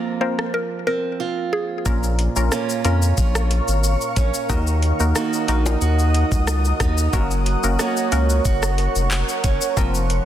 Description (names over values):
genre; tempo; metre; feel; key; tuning
dancehall; 91 BPM; 4/4; straight; Bb minor; A4 = 440 Hz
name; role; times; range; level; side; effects
wavetable chord stab; accompaniment; 0.0-10.2 s; Bb3 to Bb4; -26 LUFS; left 2 dB; none
picked acoustic archtop guitar; arpeggios; 0.0-10.2 s; Bb2 to Gb4; -25 LUFS; right 8 dB; none
mallet-like synth pluck; melody; 0.2-1.7 s; Ab4 to C5; -25 LUFS; left 1 dB; chorus, ping-pong delay
island pop drum kit; drums; 0.4-10.2 s; handclaps, hi-hat, kick drum, rim click, shaker; -24 LUFS; equal; none
granular cloud pad; sustained chords; 2.8-10.2 s; Bb4 to Eb6; -27 LUFS; left 1 dB; built-in reverb, sidechain pumping
saturated sub bass; bass; 1.9-10.2 s; F1 to F2; -20 LUFS; equal; none
tube shaker and timbales; percussion; 1.9-10.1 s; none; -31 LUFS; left 7 dB; none
room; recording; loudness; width
light reverb, digital ambience; dense, heavily limited modern master; -18 LUFS; side -11 dB against mid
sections
0.0-1.9 A section; 1.9-10.2 B section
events
none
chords
0.0 Fsus4; 1.9 Bbm; 4.5 Ebm; 7.1 Gb